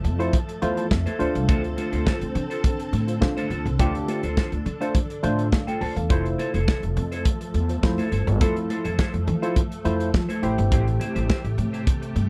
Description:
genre	early-eighties boogie funk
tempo	104 BPM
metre	4/4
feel	straight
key	D minor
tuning	A4 = 439 Hz
part	soft string machine	sustained chords	0.0-12.3 s	C3 to A4	-35 LUFS	equal	ensemble chorus
part	semi-hollow electric guitar	riff	0.0-12.1 s	E4 to C5	-36 LUFS	equal	analog chorus
part	upright bass	bass	0.0-12.3 s	F1 to F3	-28 LUFS	equal	none
part	modern studio drum kit	drums	0.0-12.3 s	hi-hat, kick drum, snare drum	-26 LUFS	equal	none
part	congas	percussion	0.0-12.3 s	none	-36 LUFS	equal	none
part	tine electric piano	accompaniment	0.2-11.4 s	A3 to C6	-29 LUFS	equal	lush chorus
room	little or no reverb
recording	none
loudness	-24 LUFS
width	mono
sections	0.0-12.3 A section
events	tine electric piano fill 0.3-1.5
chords	0.0 Fmaj7; 1.2 Dm7; 6.1 Fmaj7; 10.4 Am7

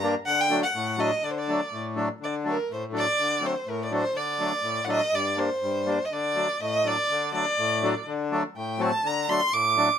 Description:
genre	klezmer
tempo	123 BPM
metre	2/4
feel	straight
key	D phrygian dominant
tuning	A4 = 442 Hz
part	warm violin	melody	0.0-10.0 s	Bb4 to D6	-25 LUFS	right 2 dB	none
part	accordion	accompaniment	0.0-9.9 s	G2 to D4	-28 LUFS	left 2 dB	none
room	moderate studio reverb, RT60 0.5 s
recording	minimal, uncompressed stereo recording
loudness	-23 LUFS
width	side -8 dB against mid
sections	0.0-2.2 A section; 2.2-10.0 B section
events	violin solo 2.2-10.0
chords	0.3 D; 5.1 Gm; 6.1 D

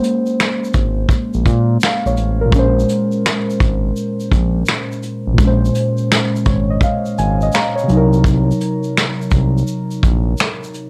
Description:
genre	lo-fi hip hop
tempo	84 BPM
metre	4/4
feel	swing 66% on 16ths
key	Bb minor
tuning	A4 = 440 Hz
part	muted felt-like synth keys	accompaniment	0.0-10.9 s	Bb2 to Bb5	-20 LUFS	equal	chorus, cassette tape
part	vintage brush drum kit	drums	0.0-10.9 s	finger snaps, hi-hat, kick drum, shaker, snare drum	-19 LUFS	equal	none
part	smooth synth bass	bass	0.7-10.3 s	Ab1 to Bb2	-19 LUFS	equal	none
room	little or no reverb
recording	dry, gritty hardware recording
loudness	-16 LUFS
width	mono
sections	0.0-2.5 A section; 2.5-10.9 B section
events	synth keys fill 6.1-8.2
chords	0.0 Bbm9; 7.9 Cm7b5

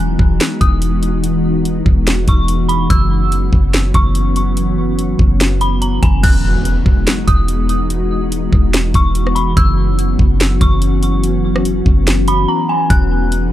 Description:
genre	hip hop, atmospheric cloud-rap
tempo	144 BPM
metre	4/4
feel	half-time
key	E major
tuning	A4 = 439 Hz
part	glassy FM pad	sustained chords	0.0-13.5 s	E3 to F#4	-18 LUFS	left 1 dB	ensemble chorus, built-in reverb, sidechain pumping
part	soft 808-style bass	bass	0.0-13.5 s	E1 to F#1	-16 LUFS	equal	none
part	trap drum kit	drums	0.2-13.4 s	crash cymbal, hi-hat, kick drum, rim click, snare drum	-14 LUFS	equal	none
part	dark detuned synth bell	melody	0.6-13.3 s	G#5 to F#6	-21 LUFS	equal	chorus, phaser, tremolo, digital delay
part	impact	sound effects	6.2-7.9 s	none	-23 LUFS	equal	none
room	little or no reverb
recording	dark, warm production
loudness	-12 LUFS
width	side -13 dB against mid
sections	0.0-6.2 A section; 6.2-13.5 B section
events	impact 6.2-7.9; break 12.5-12.9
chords	0.0 Emaj9; 2.9 F#7sus4; 6.2 Emaj9; 9.6 F#7sus4; 12.9 Emaj9

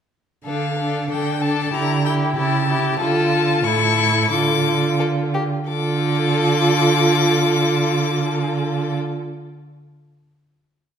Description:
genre	quick classical-period movement for string quartet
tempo	86-95 BPM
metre	2/4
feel	straight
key	D minor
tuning	A4 = 438 Hz
part	rich cello	bass	0.4-8.9 s	A2 to D3	-21 LUFS	right 4 dB	none
part	clear violin	melody	0.5-9.0 s	F5 to D6	-23 LUFS	left 9 dB	none
part	rich violin	second line	0.5-9.0 s	G4 to A4	-25 LUFS	left 4 dB	none
part	rich viola	accompaniment	0.5-9.0 s	D4 to F4	-22 LUFS	right 1 dB	none
room	wet recital hall reverb, RT60 1.6 s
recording	none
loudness	-17 LUFS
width	side -8 dB against mid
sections	0.5-5.7 A section; 5.7-8.4 final chord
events	slowing down 2.4-5.7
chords	0.5 Dm; 1.7 Em7b5/D; 2.4 A7/C#; 3.0 Dm; 3.7 A; 4.3 Dm

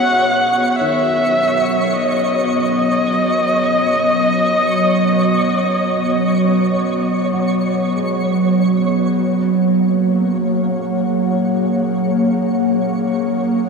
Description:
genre	ambient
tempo	free time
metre	none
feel	none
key	unclear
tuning	A4 = 438 Hz
part	dark electric violin	melody	0.0-7.9 s	D#5 to F#5	-17 LUFS	equal	shimmer reverb, analog delay
part	ethereal airy pad	sustained chords	0.0-13.7 s	F#3 to F#5	-16 LUFS	equal	ensemble chorus, built-in reverb, shimmer reverb
part	felt-muted upright piano	arpeggios	0.0-13.7 s	D#3 to C#5	-32 LUFS	left 1 dB	none
part	twinkling granular texture	texture	0.0-13.7 s	C#5 to C#6	-27 LUFS	right 1 dB	built-in reverb, analog chorus, shimmer reverb
room	wet lush hall reverb, RT60 2.6 s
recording	dreamy mix soaked in reverb, cassette tape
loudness	-14 LUFS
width	side -4 dB against mid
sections	0.0-9.2 A section; 9.2-13.7 B section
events	none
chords	0.0 C#9sus4; 9.2 F#add9

